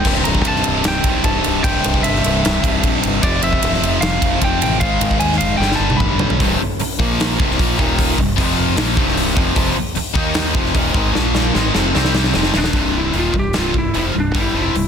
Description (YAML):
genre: hard rock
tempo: 151 BPM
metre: 4/4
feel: straight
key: unclear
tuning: A4 = 440 Hz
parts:
  - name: lightly driven lead guitar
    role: melody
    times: 0.0-6.3, 12.6-14.9 s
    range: D4 to B5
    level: -22 LUFS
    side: equal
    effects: tape echo
  - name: distorted electric guitar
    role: riff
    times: 0.0-14.9 s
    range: C2 to Eb4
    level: -20 LUFS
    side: left 14 dB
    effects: overdrive
  - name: high-gain distorted guitar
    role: riff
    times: 0.0-14.9 s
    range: C2 to Eb4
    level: -21 LUFS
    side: right 12 dB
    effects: distortion
  - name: growling fingered electric bass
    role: bass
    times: 0.0-14.9 s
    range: C1 to Eb2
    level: -22 LUFS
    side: equal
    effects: overdrive
  - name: huge arena drum kit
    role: drums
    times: 0.0-14.8 s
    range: crash cymbal, hi-hat, kick drum, ride cymbal, snare drum, toms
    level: -19 LUFS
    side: equal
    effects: none
room: studio ambience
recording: dense, heavily limited modern master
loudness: -14 LUFS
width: side -7 dB against mid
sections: 0.0-6.4 A section; 6.4-12.7 B section; 12.7-14.9 C section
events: drum fill 5.6-6.4, 11.2-12.7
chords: 0.1 C; 3.2 F5; 4.8 Ab5; 5.6 G; 6.4 C5; 7.0 Bb5; 7.4 C5; 7.8 Eb5; 8.2 C5; 8.4 F5; 8.8 C5; 9.6 F5; 10.2 Eb5; 10.6 F5; 11.2 Bb5; 11.6 F5; 11.9 C5; 12.3 F5; 12.7 C